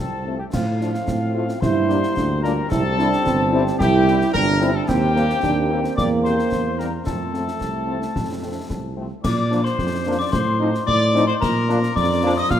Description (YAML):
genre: military-style march for wind band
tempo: 110 BPM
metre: 2/4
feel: straight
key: F major, Bb major from 4.9 s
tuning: A4 = 440 Hz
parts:
  - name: mellow trumpet section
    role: melody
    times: 0.0-12.6 s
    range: F4 to F5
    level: -26 LUFS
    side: left 1 dB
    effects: none
  - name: mellow euphonium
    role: second line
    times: 0.0-8.9 s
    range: F3 to F4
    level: -24 LUFS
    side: right 4 dB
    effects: none
  - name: mellow hollow piccolo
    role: second line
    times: 0.0-12.6 s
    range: F5 to F6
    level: -27 LUFS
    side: left 4 dB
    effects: none
  - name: clear trombone section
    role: sustained chords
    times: 0.0-12.3 s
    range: F3 to Eb4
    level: -29 LUFS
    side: right 1 dB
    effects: none
  - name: mellow tuba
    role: bass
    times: 0.0-12.6 s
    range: G1 to Bb2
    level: -22 LUFS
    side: right 2 dB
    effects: none
  - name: mellow French horn section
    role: accompaniment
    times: 0.3-12.3 s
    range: F3 to F4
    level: -28 LUFS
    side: left 5 dB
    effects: none
  - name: concert snare drum, clash cymbals and concert bass drum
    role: drums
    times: 0.5-12.6 s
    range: none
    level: -28 LUFS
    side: left 1 dB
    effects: none
  - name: glockenspiel with soft plastic mallets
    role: second line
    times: 9.2-12.6 s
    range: Bb5 to F6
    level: -27 LUFS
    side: left 8 dB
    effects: none
room: moderate concert hall reverb, RT60 2.2 s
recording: none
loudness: -18 LUFS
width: side -10 dB against mid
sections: 0.5-9.2 A section; 9.2-12.6 B section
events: none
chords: 0.0 F; 0.5 F/A; 1.6 Gm; 2.7 C; 4.9 Cm7/Eb; 6.0 C7/E; 7.1 F; 9.2 Bb; 10.3 F7/A; 11.4 Bb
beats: | 0.53 1.07 | 1.62 2.16 | 2.71 3.25 | 3.79 4.34 | 4.88 5.43 | 5.97 6.52 | 7.06 7.61 | 8.15 8.70 | 9.24 9.79 | 10.33 10.88 | 11.42 11.96 | 12.51